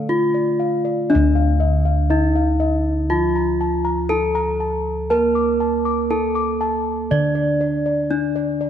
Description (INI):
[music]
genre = Javanese gamelan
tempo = 60 BPM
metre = 4/4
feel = straight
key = D pelog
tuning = A4 = 440 Hz
[part]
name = gamelan-type bronze metallophone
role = melody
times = 0.0-8.7 s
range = D4 to D5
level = -21 LUFS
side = left 1 dB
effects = none
[part]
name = gamelan-type bronze metallophone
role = accompaniment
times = 0.0-8.7 s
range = D3 to D4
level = -26 LUFS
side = right 6 dB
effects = none
[part]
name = gamelan-type bossed gongs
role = bass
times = 0.0-8.7 s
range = D2 to Bb4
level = -22 LUFS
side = equal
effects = none
[part]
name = gamelan-type bossed gongs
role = arpeggios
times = 0.3-8.7 s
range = D5 to D6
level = -26 LUFS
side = left 4 dB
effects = none
[sound]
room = moderate scoring stage reverb, RT60 2.0 s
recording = none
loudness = -17 LUFS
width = side -9 dB against mid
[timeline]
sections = 0.0-1.1 A section; 1.1-8.7 B section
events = none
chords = none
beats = 0.09 | 1.10 2.10 3.10 4.10 | 5.10 6.10 7.10 8.10